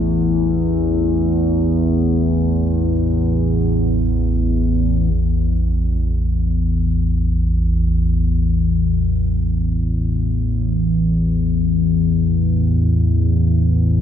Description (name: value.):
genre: ambient.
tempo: free time.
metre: none.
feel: none.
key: unclear.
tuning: A4 = 440 Hz.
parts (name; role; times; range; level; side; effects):
analog drone; solo; 0.0-14.0 s; A1 to E2; -15 LUFS; equal; chorus.
room: wet huge ambient reverb, RT60 8.1 s.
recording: none.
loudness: -15 LUFS.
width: side -9 dB against mid.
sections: 0.0-5.1 A section; 5.1-14.0 B section.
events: none.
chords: 0.0 A5.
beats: free time.